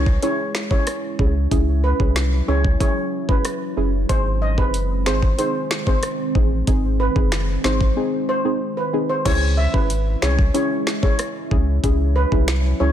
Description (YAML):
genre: dancehall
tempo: 93 BPM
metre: 4/4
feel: straight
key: C# harmonic minor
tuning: A4 = 440 Hz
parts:
  - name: steel pan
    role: melody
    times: 0.0-12.9 s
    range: B4 to E5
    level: -25 LUFS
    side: right 1 dB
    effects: ping-pong delay
  - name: deep mellow chord stab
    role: accompaniment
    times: 0.0-12.9 s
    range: B#3 to G#4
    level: -25 LUFS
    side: equal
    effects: chorus
  - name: deep dark ambient pad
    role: sustained chords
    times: 0.2-12.9 s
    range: D#3 to E4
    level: -28 LUFS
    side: equal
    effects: chorus, built-in reverb, sidechain pumping
  - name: warm sub bass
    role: bass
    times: 0.0-12.9 s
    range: F#1 to C#2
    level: -20 LUFS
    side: equal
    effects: none
  - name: island pop drum kit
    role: drums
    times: 0.1-12.6 s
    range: crash cymbal, finger snaps, hi-hat, kick drum, rim click, snare drum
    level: -21 LUFS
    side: equal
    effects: none
room: digital ambience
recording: none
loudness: -17 LUFS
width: side -10 dB against mid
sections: 0.0-9.3 A section; 9.3-12.9 B section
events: break 8.0-9.3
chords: 0.0 C#m; 4.1 G#; 9.3 C#m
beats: 0.22 0.87 | 1.51 2.16 2.80 3.45 | 4.09 4.74 5.38 6.03 | 6.67 7.32 7.96 8.61 | 9.26 9.90 10.55 11.19 | 11.84 12.48